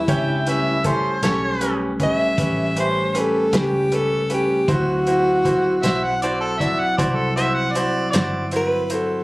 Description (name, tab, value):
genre	slow blues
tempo	52 BPM (dotted quarters)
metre	12/8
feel	straight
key	A mixolydian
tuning	A4 = 440 Hz
part	breathy tenor saxophone	melody	0.0-9.2 s	E4 to E5	-20 LUFS	equal	none
part	mellow tonewheel organ	sustained chords	0.0-9.2 s	F#3 to E4	-28 LUFS	equal	slow rotary speaker
part	vintage muted fingered electric bass	bass	0.0-9.2 s	G1 to D2	-27 LUFS	equal	none
part	clear harmonica	second line	0.1-8.5 s	A4 to G5	-23 LUFS	right 1 dB	overdrive
part	bright upright piano	accompaniment	0.1-9.2 s	C#4 to D5	-24 LUFS	right 1 dB	none
part	warm soul drum kit	drums	0.1-9.1 s	hi-hat, kick drum, snare drum	-24 LUFS	equal	none
room	small room ambience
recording	recorded on a phone in the room, club reverb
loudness	-17 LUFS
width	side -21 dB against mid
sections	0.0-9.2 A section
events	none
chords	0.0 A9; 4.7 D9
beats	| 0.08 1.24 2.38 3.54 | 4.68 5.83 6.98 8.13